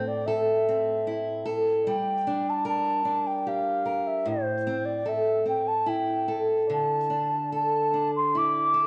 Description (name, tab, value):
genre	celtic folk, Celtic slow air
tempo	75 BPM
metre	3/4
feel	rubato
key	unclear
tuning	A4 = 440 Hz
part	reedy baroque flute	melody	0.0-8.9 s	C5 to D6	-28 LUFS	equal	none
part	fingerpicked steel-string acoustic guitar	accompaniment	0.0-8.9 s	A2 to Bb4	-30 LUFS	equal	none
room	light reverb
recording	worn, warbling old tape, cassette tape, warbly pitch drift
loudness	-26 LUFS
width	mono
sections	0.0-8.9 A section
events	none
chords	0.0 Am; 1.9 Gm; 4.2 Am; 6.7 Dsus2